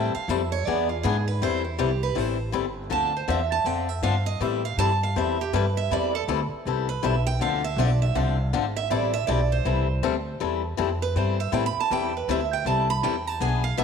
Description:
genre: acoustic string swing (jazz manouche).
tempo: 160 BPM.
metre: 4/4.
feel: swing 62% on 8ths.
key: A minor.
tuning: A4 = 440 Hz.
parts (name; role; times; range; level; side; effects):
picked steel-string acoustic guitar; melody; 0.0-13.8 s; E4 to B5; -27 LUFS; right 8 dB; slapback echo.
picked swing-style acoustic guitar; accompaniment; 0.0-13.8 s; D3 to A4; -27 LUFS; left 11 dB; none.
upright bass; bass; 0.0-13.8 s; G1 to A2; -27 LUFS; equal; none.
room: moderate echo chamber reverb, RT60 1.9 s, studio reverb.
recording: 1960s-style stereo with parts hard left and right.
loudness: -22 LUFS.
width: side -6 dB against mid.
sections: 0.0-1.4 A section; 1.4-13.8 A section.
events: steel-string acoustic guitar solo 0.0-13.8.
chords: 0.0 Am7; 0.7 E7; 1.4 Am7; 2.9 Dm9; 4.4 Am7; 7.4 Dm7; 8.9 Am7.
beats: 0.29 0.66 1.04 | 1.41 1.79 2.16 2.54 | 2.91 3.28 3.66 4.03 | 4.41 4.78 5.16 5.53 | 5.91 6.28 6.66 7.03 | 7.41 7.78 8.15 8.53 | 8.90 9.28 9.65 10.03 | 10.40 10.78 11.15 11.53 | 11.90 12.28 12.65 13.03 | 13.40 13.78.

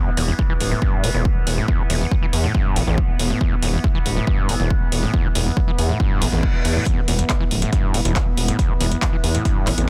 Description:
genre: driving peak-time techno.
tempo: 139 BPM.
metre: 4/4.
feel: straight.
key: unclear.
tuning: A4 = 435 Hz.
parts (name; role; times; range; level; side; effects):
overdriven acid bass; riff; 0.0-9.9 s; E2 to E3; -28 LUFS; equal; distortion, sidechain pumping.
overtone-sweeping drone; drone; 0.0-9.9 s; E3 to B3; -32 LUFS; equal; chorus, built-in reverb, phaser, sidechain pumping.
ethereal airy pad; texture; 0.1-9.9 s; B3 to B5; -38 LUFS; equal; none.
gritty driven synth bass; bass; 0.2-9.9 s; D1 to E2; -23 LUFS; equal; sidechain pumping.
techno drum kit; drums; 0.2-9.9 s; handclaps, hi-hat; -28 LUFS; equal; none.
electronic kick drum; drums; 0.4-9.5 s; none; -23 LUFS; equal; overdrive.
reverse cymbal; sound effects; 6.2-6.9 s; none; -34 LUFS; equal; none.
room: little or no reverb.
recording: dense, heavily limited modern master.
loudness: -20 LUFS.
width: mono.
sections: 0.0-9.9 A section.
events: reverse cymbal 6.2-6.9.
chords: 0.0 E5.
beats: 0.39 0.82 1.25 | 1.68 2.12 2.55 2.98 | 3.41 3.84 4.27 4.71 | 5.14 5.57 6.00 6.43 | 6.86 7.29 7.73 8.16 | 8.59 9.02 9.45 9.88.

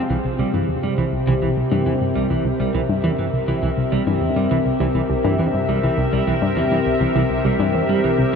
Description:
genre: ambient, sequencer-driven space music.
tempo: 102 BPM.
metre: 4/4.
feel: straight.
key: unclear.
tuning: A4 = 440 Hz.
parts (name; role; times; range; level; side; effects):
evolving wavetable pad; sustained chords; 0.0-8.4 s; C3 to E5; -20 LUFS; left 2 dB; chorus, built-in reverb.
electric guitar at the edge of break-up; arpeggios; 0.1-8.4 s; E3 to G3; -25 LUFS; right 4 dB; auto-pan, analog delay.
analog pluck; riff; 0.1-8.2 s; C2 to G2; -22 LUFS; equal; chorus, analog delay.
room: wet huge ambient reverb, RT60 7.6 s.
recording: none.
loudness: -17 LUFS.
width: side -6 dB against mid.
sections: 0.0-8.4 A section.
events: filter sweep on synth arpeggio sound 0.0-8.4.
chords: 0.1 C7.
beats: | 0.10 0.69 1.27 1.86 | 2.45 3.04 3.63 4.21 | 4.80 5.39 5.98 6.57 | 7.16 7.75 8.33.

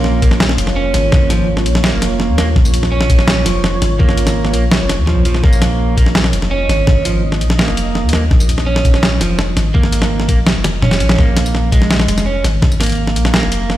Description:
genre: half-time drum and bass.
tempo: 167 BPM.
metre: 4/4.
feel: half-time.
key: Bb minor.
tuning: A4 = 440 Hz.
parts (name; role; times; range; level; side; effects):
deep dark ambient pad; sustained chords; 0.0-11.2 s; Bb3 to Eb5; -24 LUFS; right 1 dB; chorus, built-in reverb, sidechain pumping.
electric guitar at the edge of break-up; arpeggios; 0.0-13.8 s; F3 to Db4; -20 LUFS; right 4 dB; digital delay.
long sustained 808-style bass; bass; 0.0-13.8 s; F1 to Eb2; -16 LUFS; equal; none.
boom bap sampler-style drum kit; drums; 0.0-13.8 s; hi-hat, snare drum, tambourine, toms; -17 LUFS; equal; none.
electronic kick drum; drums; 0.2-12.7 s; none; -12 LUFS; equal; none.
room: little or no reverb.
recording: played on a big sound system in a bare room, stone room reverb.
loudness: -11 LUFS.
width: side -14 dB against mid.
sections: 0.0-11.2 A section; 11.2-13.8 A section.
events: drop 0.0-11.2, 11.2-13.8; drum fill 10.6-11.2.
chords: 0.0 Bbm; 11.2 Bb5.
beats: 0.04 0.40 0.76 | 1.12 1.48 1.84 2.20 | 2.56 2.92 3.28 3.64 | 4.00 4.36 4.72 5.08 | 5.43 5.79 6.15 6.51 | 6.87 7.23 7.59 7.95 | 8.31 8.67 9.03 9.39 | 9.75 10.11 10.46 10.82 | 11.18 11.54 11.90 12.26 | 12.62 12.98 13.34 13.70.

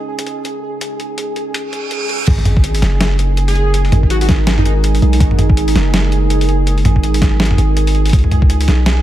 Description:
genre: half-time drum and bass.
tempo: 164 BPM.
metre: 4/4.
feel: swing 59% on 16ths, half-time.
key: unclear.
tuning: A4 = 440 Hz.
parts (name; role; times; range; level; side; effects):
deep dark ambient pad; sustained chords; 0.0-9.0 s; G#3 to D#5; -22 LUFS; right 4 dB; chorus, built-in reverb, sidechain pumping.
pulsing gated texture; texture; 0.0-9.0 s; G#4; -25 LUFS; right 2 dB; chorus, built-in reverb.
boom bap sampler-style drum kit; drums; 0.2-8.9 s; crash cymbal, hi-hat, snare drum, toms; -19 LUFS; equal; studio ambience.
reverse cymbal and sub drop; sound effects; 1.7-3.7 s; none; -24 LUFS; right 2 dB; none.
long sustained 808-style bass; bass; 2.3-9.0 s; F#1 to C#2; -13 LUFS; equal; none.
electronic kick drum; drums; 2.3-8.5 s; none; -13 LUFS; equal; studio ambience.
plucky unison lead; melody; 3.5-4.7 s; D#4 to G#4; -24 LUFS; equal; wide subtle chorus, tape echo.
room: digital ambience.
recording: none.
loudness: -11 LUFS.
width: side -13 dB against mid.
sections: 0.0-2.3 A section; 2.3-9.0 B section.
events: filter sweep on ambient pad 0.0-2.3; reverse cymbal 1.7-2.3; drop 2.3-9.0; impact 2.3-3.7.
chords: 0.0 C#sus2; 2.3 G#7(no3); 8.1 C#sus2.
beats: 0.08 0.45 | 0.81 1.18 1.54 1.91 | 2.28 2.64 3.01 3.37 | 3.74 4.11 4.47 4.84 | 5.20 5.57 5.93 6.30 | 6.67 7.03 7.40 7.76 | 8.13 8.50 8.86.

